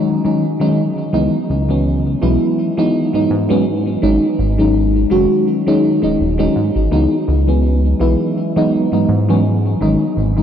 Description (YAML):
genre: vaporwave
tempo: 83 BPM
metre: 4/4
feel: swing 55% on 16ths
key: C# minor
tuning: A4 = 440 Hz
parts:
  - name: mellow FM electric piano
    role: accompaniment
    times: 0.0-10.4 s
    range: D#3 to F#4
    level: -14 LUFS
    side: equal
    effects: phaser, wide subtle chorus, cassette tape, ping-pong delay
  - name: chorused synth bass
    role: bass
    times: 1.1-10.4 s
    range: D#1 to G#2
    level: -17 LUFS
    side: equal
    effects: none
room: wet cathedral reverb, RT60 6.7 s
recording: dreamy mix soaked in reverb, cassette tape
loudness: -13 LUFS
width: side -9 dB against mid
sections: 0.0-10.4 A section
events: none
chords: 0.0 G#7sus4; 1.1 C#m11; 3.7 G#7sus4; 6.9 C#m11; 9.5 G#7sus4